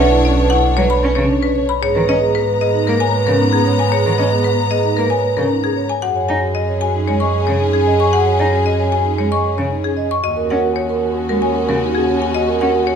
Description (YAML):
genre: classical, minimalist pattern music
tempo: 114 BPM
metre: 4/4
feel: straight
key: F# major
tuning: A4 = 440 Hz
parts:
  - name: marimba with hard mallets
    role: melody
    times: 0.0-13.0 s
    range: G#4 to C#6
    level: -20 LUFS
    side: left 8 dB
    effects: none
  - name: mellow French horn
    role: second line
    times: 0.0-13.0 s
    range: D4 to B4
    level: -23 LUFS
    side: right 4 dB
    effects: none
  - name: rich cello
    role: accompaniment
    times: 0.0-12.7 s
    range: C#3 to D#4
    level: -24 LUFS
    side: equal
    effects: none
  - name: rich studio string section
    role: sustained chords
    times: 0.0-13.0 s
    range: B3 to A#5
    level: -22 LUFS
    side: left 5 dB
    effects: none
  - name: vibraphone with soft mallets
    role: arpeggios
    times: 0.0-12.9 s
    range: C#4 to D#5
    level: -20 LUFS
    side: right 5 dB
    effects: none
  - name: clear double bass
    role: bass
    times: 0.0-13.0 s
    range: B1 to G#2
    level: -20 LUFS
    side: right 1 dB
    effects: none
room: wet recital hall reverb, RT60 1.5 s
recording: minimal, uncompressed stereo recording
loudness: -14 LUFS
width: side -7 dB against mid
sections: 0.0-13.0 A section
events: none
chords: 0.0 Bmadd9; 1.8 G#madd9; 6.0 F#sus2; 10.2 D#m7